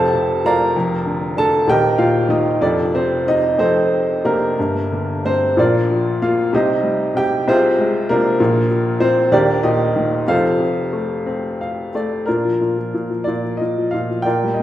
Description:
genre	classical, lyrical solo piano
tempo	58-67 BPM (dotted quarters)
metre	6/8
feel	rubato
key	Bb major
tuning	A4 = 440 Hz
part	clear upright piano	solo	0.0-14.6 s	Eb1 to Bb5	-15 LUFS	equal	none
room	wet recital hall reverb, RT60 1.3 s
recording	recorded in a church or concert hall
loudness	-15 LUFS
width	side -13 dB against mid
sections	0.0-12.3 A section; 12.3-14.6 B section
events	upright piano fill 11.3-12.3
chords	0.0 F; 0.8 Bb/F; 1.7 Eb; 2.6 F; 4.6 Gm; 5.6 Bb; 6.5 Cm; 7.5 Fm/C; 8.4 Bb; 9.3 Eb; 10.3 F; 12.3 Bb

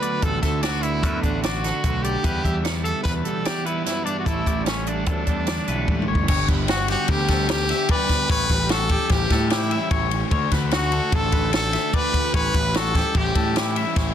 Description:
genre	math rock and midwest emo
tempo	149 BPM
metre	5/4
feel	straight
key	D major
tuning	A4 = 440 Hz
part	brilliant trumpet	melody	0.0-14.1 s	C#4 to B4	-25 LUFS	equal	tape echo
part	twelve-string electric guitar	accompaniment	0.0-8.3 s	D2 to B3	-31 LUFS	right 7 dB	none
part	twangy electric guitar	arpeggios	0.0-14.1 s	F#4 to E5	-29 LUFS	left 8 dB	none
part	overdriven semi-hollow guitar	riff	0.0-14.1 s	G2 to G4	-29 LUFS	equal	none
part	compact cocktail drum kit	drums	0.0-14.1 s	crash cymbal, hi-hat, kick drum, ride cymbal, snare drum, toms	-23 LUFS	equal	soft clipping on snare
part	growling picked electric bass	bass	0.2-14.1 s	G1 to A2	-26 LUFS	equal	overdrive
room	light reverb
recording	dense, heavily limited modern master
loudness	-19 LUFS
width	side -9 dB against mid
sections	0.0-6.3 A section; 6.3-14.1 B section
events	drum fill 5.9-6.3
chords	0.0 D69; 2.2 Em7; 4.3 A7sus4; 6.3 G; 8.3 A7; 10.3 D; 12.3 A7

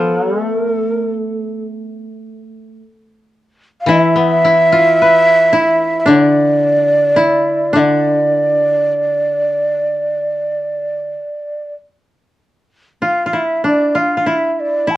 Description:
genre	japanese traditional, Japanese chamber music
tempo	48-55 BPM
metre	4/4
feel	rubato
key	D kumoi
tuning	A4 = 440 Hz
part	breathy mellow shakuhachi	melody	0.0-15.0 s	A4 to A5	-14 LUFS	right 1 dB	none
part	koto	second line	0.0-15.0 s	A3 to F4	-17 LUFS	equal	none
part	koto	accompaniment	3.9-11.1 s	D3 to B4	-18 LUFS	left 4 dB	none
room	moderate studio reverb, RT60 0.5 s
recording	worn, warbling old tape, cassette tape, warbly pitch drift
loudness	-12 LUFS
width	side -15 dB against mid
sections	0.0-13.0 A section; 13.0-15.0 B section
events	none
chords	none

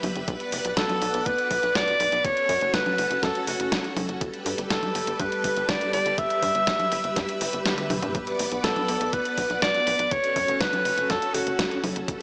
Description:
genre	italo disco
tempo	122 BPM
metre	4/4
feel	straight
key	B minor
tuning	A4 = 439 Hz
part	string machine, full ensemble	sustained chords	0.0-12.2 s	G3 to F#5	-33 LUFS	equal	ensemble chorus
part	tight sequencer bass	bass	0.0-12.2 s	F#1 to G2	-37 LUFS	equal	tube saturation
part	clean 12-bit digital drum machine	drums	0.0-12.2 s	congas, hi-hat, snare drum, toms	-31 LUFS	equal	gated reverb
part	electronic kick drum	drums	0.3-12.2 s	none	-37 LUFS	equal	none
part	clear alto saxophone	melody	0.8-11.8 s	F#4 to E5	-27 LUFS	equal	digital delay
room	moderate lush hall reverb, RT60 2.3 s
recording	small speaker sound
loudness	-25 LUFS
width	mono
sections	0.0-12.2 A section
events	kick drops out 7.7-8.1; drum fill 7.7-8.1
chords	0.3 Bm; 2.2 F#m; 4.2 Gadd9; 6.2 Em/G; 8.1 Bm; 10.1 F#m

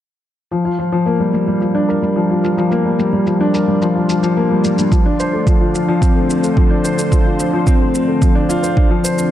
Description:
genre	piano and strings electronica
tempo	109 BPM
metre	4/4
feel	straight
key	G minor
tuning	A4 = 440 Hz
part	lush unison pad	sustained chords	0.5-9.3 s	D3 to C5	-25 LUFS	right 2 dB	chorus, phaser, sidechain pumping
part	dark grand piano	riff	0.5-9.3 s	F3 to C5	-14 LUFS	left 1 dB	tape echo
part	shaker	drums	0.5-9.3 s	none	-27 LUFS	equal	low-pass filter on perc
part	electronic kick drum	drums	4.9-8.9 s	none	-13 LUFS	right 1 dB	none
room	light reverb, digital ambience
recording	none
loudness	-13 LUFS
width	side -12 dB against mid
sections	0.5-9.3 A section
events	fade-in on analog synth pad 0.5-9.3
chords	0.5 Gm7; 4.9 Dm7

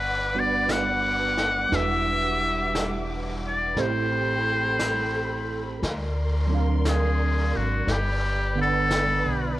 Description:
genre	jazz ballad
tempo	58 BPM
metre	4/4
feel	swing 68% on 8ths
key	G major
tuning	A4 = 441 Hz
part	trumpet with metal mute	melody	0.0-9.6 s	F#4 to F#5	-25 LUFS	left 2 dB	none
part	dark studio string section	sustained chords	0.0-9.6 s	G3 to D6	-33 LUFS	left 1 dB	cassette tape
part	upright bass	bass	0.0-9.6 s	E1 to D2	-28 LUFS	equal	none
part	tine electric piano	accompaniment	0.3-9.6 s	D3 to F#5	-29 LUFS	right 6 dB	ensemble chorus, cassette tape
part	vintage brush drum kit	drums	0.7-9.6 s	brushed snare drum, hi-hat, snare drum	-33 LUFS	equal	cassette tape
room	light reverb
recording	home recording on cassette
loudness	-22 LUFS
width	side -16 dB against mid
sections	0.0-9.6 A section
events	none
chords	0.0 Gmaj7; 1.7 Em9; 3.8 Am9; 5.8 D7alt; 7.9 Gmaj7

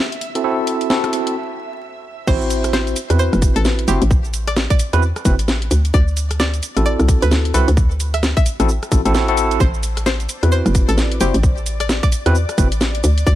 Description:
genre	UK garage, two-step garage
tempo	131 BPM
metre	4/4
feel	swing 61% on 16ths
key	A dorian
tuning	A4 = 440 Hz
part	ethereal airy pad	sustained chords	0.0-2.3, 10.3-13.4 s	D5 to E5	-32 LUFS	equal	ensemble chorus, built-in reverb, sidechain pumping
part	garage drum kit	drums	0.1-13.4 s	cabasa, crash cymbal, hi-hat, rim click, snare drum	-23 LUFS	equal	studio ambience
part	tine electric piano	stabs	0.4-12.7 s	C4 to C5	-21 LUFS	equal	medium stereo tremolo, dub echo
part	string-like resonator pluck	melody	2.3-13.4 s	G4 to E5	-26 LUFS	equal	chorus, ping-pong delay
part	hollow knocking FM bass	bass	2.3-13.4 s	F#1 to E2	-17 LUFS	equal	none
part	electronic kick drum	drums	2.3-13.4 s	none	-16 LUFS	equal	studio ambience
room	digital ambience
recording	vinyl crackle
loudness	-14 LUFS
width	side -14 dB against mid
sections	0.0-2.3 A section; 2.3-13.4 B section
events	build-up 0.0-2.3; break 1.4-2.3; drop 2.3-13.4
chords	0.0 C6; 2.3 Am69; 5.7 D9; 9.6 Am69

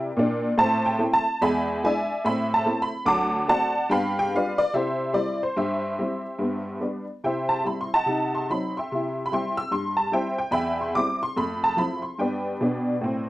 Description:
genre	jazz, stride piano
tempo	145 BPM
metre	4/4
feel	swing 64% on 8ths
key	C major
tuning	A4 = 444 Hz
part	honky-tonk upright piano	solo	0.0-13.3 s	D2 to E6	-22 LUFS	equal	none
room	moderate studio reverb, RT60 0.5 s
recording	none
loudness	-22 LUFS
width	side -16 dB against mid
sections	0.0-7.2 A section; 7.2-13.3 B section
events	none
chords	0.0 Gm; 0.6 Am; 1.4 E7; 2.2 Am; 3.1 D7; 3.9 G7; 4.7 C; 5.6 C/G; 6.4 G; 7.2 C; 10.5 C/E; 11.4 Fmaj7; 12.2 G

